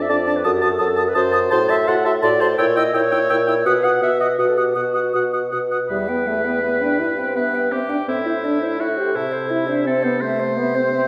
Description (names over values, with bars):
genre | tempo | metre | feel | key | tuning
quick classical-period movement for wind quintet | 167 BPM | 3/4 | straight | E minor | A4 = 440 Hz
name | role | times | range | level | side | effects
dark clarinet | accompaniment | 0.0-11.1 s | F#4 to F#5 | -26 LUFS | equal | none
mellow bassoon | bass | 0.0-11.1 s | E2 to C3 | -24 LUFS | equal | none
bright silver concert flute | melody | 0.1-11.1 s | C5 to E6 | -28 LUFS | equal | none
clear oboe | second line | 0.1-11.1 s | E4 to A5 | -27 LUFS | equal | none
warm French horn | accompaniment | 0.1-11.1 s | G3 to A4 | -26 LUFS | equal | none
room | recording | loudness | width
wet recital hall reverb, RT60 1.5 s | heard from further back in the room | -19 LUFS | mono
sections
0.0-5.9 A section; 5.9-11.1 B section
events
none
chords
0.4 F#dim7; 1.5 F#dim/A; 2.6 A#dim7; 3.7 B; 5.9 Em; 7.0 Em/G; 8.1 Am; 9.2 Am/C